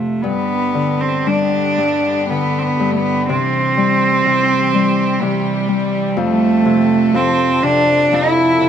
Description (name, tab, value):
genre	celtic folk, Celtic slow air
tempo	57-64 BPM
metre	3/4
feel	rubato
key	G mixolydian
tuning	A4 = 441 Hz
part	rich cello	melody	0.0-8.7 s	G3 to E4	-15 LUFS	right 2 dB	none
part	Celtic harp	accompaniment	0.0-8.7 s	F2 to G3	-19 LUFS	left 5 dB	none
part	rich chamber string section	sustained chords	0.2-8.7 s	D3 to A4	-26 LUFS	left 3 dB	none
room	light reverb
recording	close, detailed microphones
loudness	-13 LUFS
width	side -8 dB against mid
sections	0.2-8.7 A section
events	none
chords	0.2 G; 3.3 C; 6.2 F